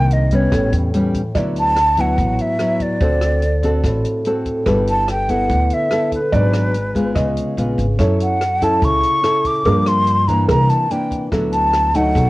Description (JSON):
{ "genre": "bossa nova", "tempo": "144 BPM", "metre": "4/4", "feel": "straight", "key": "D major", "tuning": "A4 = 440 Hz", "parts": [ { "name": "breathy concert flute", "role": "melody", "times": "0.0-12.3 s", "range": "B4 to D6", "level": "-18 LUFS", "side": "equal", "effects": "cassette tape" }, { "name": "felt-muted upright piano", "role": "second line", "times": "0.0-12.3 s", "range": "A4 to Eb5", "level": "-24 LUFS", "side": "right 2 dB", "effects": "cassette tape" }, { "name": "nylon-string guitar", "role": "accompaniment", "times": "0.0-12.3 s", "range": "G2 to A4", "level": "-20 LUFS", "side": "left 1 dB", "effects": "cassette tape" }, { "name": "upright bass", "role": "bass", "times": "0.0-12.3 s", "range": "G1 to G2", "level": "-19 LUFS", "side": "equal", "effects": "none" }, { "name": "compact cocktail drum kit", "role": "drums", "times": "0.1-12.2 s", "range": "hi-hat, kick drum, rim click", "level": "-25 LUFS", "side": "equal", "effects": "cassette tape" } ], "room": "studio reverb", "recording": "home recording on cassette", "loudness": "-14 LUFS", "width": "side -19 dB against mid", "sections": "0.0-1.4 A section; 1.4-12.3 B section", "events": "none", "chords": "0.0 Cm9; 0.5 A9; 1.4 D69; 3.0 D7; 4.7 G69; 6.3 G#m7b5; 7.2 C#7; 8.0 F#m7; 9.7 Gm7; 10.5 C9; 11.3 D69" }